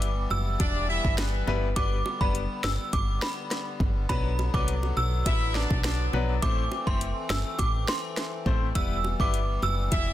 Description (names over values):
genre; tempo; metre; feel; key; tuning
dancehall; 103 BPM; 4/4; straight; E minor; A4 = 440 Hz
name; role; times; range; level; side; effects
bright concert grand piano; accompaniment; 0.0-9.4 s; F#3 to C5; -33 LUFS; left 6 dB; sidechain pumping
accordion; sustained chords; 0.0-10.1 s; D3 to C4; -37 LUFS; left 4 dB; sidechain pumping
solid FM bass; bass; 0.0-10.1 s; E1 to C2; -28 LUFS; equal; none
afro-pop drum kit; drums; 0.0-10.1 s; hi-hat, kick drum, rim click, snare drum; -28 LUFS; equal; none
synth chime; melody; 0.3-9.8 s; B5 to E6; -32 LUFS; right 2 dB; ensemble chorus, ping-pong delay
bongos; percussion; 0.3-10.1 s; none; -40 LUFS; right 4 dB; none
warm horn section; second line; 0.6-1.6, 5.3-6.3, 9.9-10.1 s; B3 to E5; -32 LUFS; equal; ping-pong delay
room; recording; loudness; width
studio reverb; dense, heavily limited modern master; -24 LUFS; side -13 dB against mid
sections
0.0-10.1 A section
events
none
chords
0.0 Em; 1.8 G; 4.1 Bm; 6.4 Am; 8.8 Em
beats
0.02 0.60 1.18 | 1.76 2.35 2.93 3.51 | 4.09 4.68 5.26 5.84 | 6.42 7.01 7.59 8.17 | 8.76 9.34 9.92